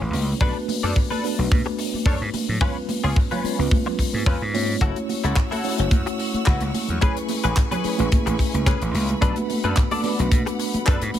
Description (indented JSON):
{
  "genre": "nu-disco, nu disco",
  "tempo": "109 BPM",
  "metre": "4/4",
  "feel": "swing 54% on 16ths",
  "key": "unclear",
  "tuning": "A4 = 439 Hz",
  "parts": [
    { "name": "mellow tine electric piano", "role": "accompaniment", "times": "0.0-11.2 s", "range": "G#3 to C#5", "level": "-27 LUFS", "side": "equal", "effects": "medium stereo tremolo, sidechain pumping, low-pass filter, dub echo" },
    { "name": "gritty slap bass", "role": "bass", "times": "0.0-11.2 s", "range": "F#1 to B2", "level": "-24 LUFS", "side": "equal", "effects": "overdrive" },
    { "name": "direct-recorded clean electric guitar", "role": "riff", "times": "0.1-11.2 s", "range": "C#4 to D5", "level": "-29 LUFS", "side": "left 3 dB", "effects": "ensemble chorus, dub echo" },
    { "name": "tight funk drum kit", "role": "drums", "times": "0.1-11.2 s", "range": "handclaps, hi-hat", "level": "-32 LUFS", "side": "left 4 dB", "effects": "none" },
    { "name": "congas", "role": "percussion", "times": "0.1-11.2 s", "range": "none", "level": "-30 LUFS", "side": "right 4 dB", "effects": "none" },
    { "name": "kick drum", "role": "drums", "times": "0.4-11.0 s", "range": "none", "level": "-20 LUFS", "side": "equal", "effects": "none" },
    { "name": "bright studio string section", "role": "sustained chords", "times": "4.8-11.2 s", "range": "A3 to E6", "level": "-32 LUFS", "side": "equal", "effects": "sidechain pumping" }
  ],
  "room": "small room reverb",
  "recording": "none",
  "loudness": "-19 LUFS",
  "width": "side -11 dB against mid",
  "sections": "0.0-11.2 A section",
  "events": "none",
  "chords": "0.4 Bm7; 2.6 C#7; 4.8 F#m7; 7.0 Amaj9; 9.2 Bm7"
}